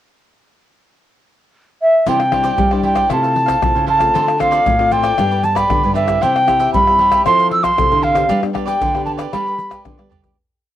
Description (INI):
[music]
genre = samba and choro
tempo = 116 BPM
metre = 4/4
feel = straight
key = C major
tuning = A4 = 441 Hz
[part]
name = reedy silver concert flute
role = melody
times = 1.8-9.8 s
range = E5 to E6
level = -14 LUFS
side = equal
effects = none
[part]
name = cavaquinho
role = accompaniment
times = 2.1-10.4 s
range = D4 to F5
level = -25 LUFS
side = right 9 dB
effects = cassette tape
[part]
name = nylon-string guitar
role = accompaniment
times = 2.1-10.4 s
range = G2 to A4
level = -24 LUFS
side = left 8 dB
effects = cassette tape, plate reverb
[part]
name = nylon-string guitar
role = bass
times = 2.1-10.3 s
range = G2 to G3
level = -22 LUFS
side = right 1 dB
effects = none
[part]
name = tube shaker, surdo, pandeiro and tamborim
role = percussion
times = 2.1-10.4 s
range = none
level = -23 LUFS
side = left 3 dB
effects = none
[sound]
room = moderate booth ambience, RT60 0.2 s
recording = home recording on cassette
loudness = -13 LUFS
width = side -12 dB against mid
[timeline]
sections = 0.0-2.1 pickup bar; 2.1-10.4 groove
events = fade-out 8.3-10.4; drum fill 10.0-10.4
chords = 0.0 N.C.; 2.1 Cadd9; 3.1 Fmaj7/C; 4.1 Dm7; 5.2 G; 6.2 C; 7.3 Fmaj7; 8.3 G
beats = 0.51 1.02 1.54 | 2.06 2.58 3.10 3.62 | 4.14 4.66 5.18 5.70 | 6.22 6.74 7.26 7.78 | 8.30 8.82 9.34 9.86